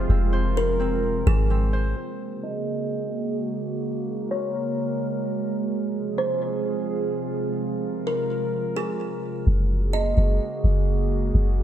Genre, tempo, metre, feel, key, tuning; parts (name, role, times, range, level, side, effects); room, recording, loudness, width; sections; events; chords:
hip hop; 128 BPM; 4/4; half-time; Gb lydian; A4 = 440 Hz
warbly tape-like pad; sustained chords; 0.0-11.6 s; C3 to Bb4; -27 LUFS; right 3 dB; chorus, built-in reverb, low-pass filter
concert harp; arpeggios; 0.0-4.5 s; Bb3 to C5; -34 LUFS; left 1 dB; digital delay
soft 808-style bass; bass; 0.0-1.9, 9.5-11.6 s; F1 to Ab1; -21 LUFS; equal
kalimba; melody; 0.6-10.4 s; Ab4 to Eb5; -29 LUFS; left 1 dB; low-pass filter, digital delay
light reverb; dark, warm production; -22 LUFS; side -10 dB against mid
0.0-2.0 A section; 2.0-9.5 B section; 9.5-11.6 C section
filter sweep 2.0-9.5
0.0 Fm; 2.0 Gbadd9; 5.7 Fm; 9.5 Gbadd9